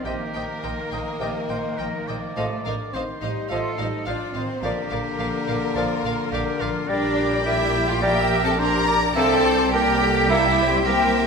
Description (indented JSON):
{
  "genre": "quick classical-period movement for symphony orchestra",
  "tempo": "106 BPM",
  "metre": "4/4",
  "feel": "rubato",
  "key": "Bb major",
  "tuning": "A4 = 441 Hz",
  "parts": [
    { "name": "rich chamber violin section", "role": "melody", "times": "0.0-11.3 s", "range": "E5 to Bb5", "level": "-32 LUFS", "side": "left 3 dB", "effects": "none" },
    { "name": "clear oboe", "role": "second line", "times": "0.0-11.2 s", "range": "F4 to E5", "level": "-30 LUFS", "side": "right 2 dB", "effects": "none" },
    { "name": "rich chamber violin section", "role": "second line", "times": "0.0-11.3 s", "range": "A4 to Bb5", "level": "-31 LUFS", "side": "left 5 dB", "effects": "none" },
    { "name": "warm French horn section", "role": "sustained chords", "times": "0.0-11.3 s", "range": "C3 to D4", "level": "-28 LUFS", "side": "left 4 dB", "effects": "none" },
    { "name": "rich chamber cello section", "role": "bass", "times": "0.0-11.3 s", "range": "A3 to Bb4", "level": "-26 LUFS", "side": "right 3 dB", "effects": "none" },
    { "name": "clear clarinet", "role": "second line", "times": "0.1-10.5 s", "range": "D5 to E5", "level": "-31 LUFS", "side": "left 3 dB", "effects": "none" },
    { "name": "mellow hollow small flute group", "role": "second line", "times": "0.1-11.2 s", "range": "A4 to Bb5", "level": "-30 LUFS", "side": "left 4 dB", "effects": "none" },
    { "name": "dark studio viola section", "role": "accompaniment", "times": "0.1-11.3 s", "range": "G4 to E5", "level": "-30 LUFS", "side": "right 2 dB", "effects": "none" },
    { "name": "warm bassoon", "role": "accompaniment", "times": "0.1-10.5 s", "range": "C3 to Bb3", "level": "-33 LUFS", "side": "right 1 dB", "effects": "none" },
    { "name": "warm studio double bass section", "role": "bass", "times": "0.1-11.3 s", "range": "A1 to C2", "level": "-29 LUFS", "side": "right 3 dB", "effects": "none" }
  ],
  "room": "wet scoring stage reverb, RT60 1.6 s",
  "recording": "minimal, uncompressed stereo recording",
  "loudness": "-20 LUFS",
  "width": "side -5 dB against mid",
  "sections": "0.0-11.3 A section",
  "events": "none",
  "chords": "0.1 Cm7/Bb; 2.4 F7/A; 4.6 Bb; 6.9 Gm/Bb; 9.2 C7"
}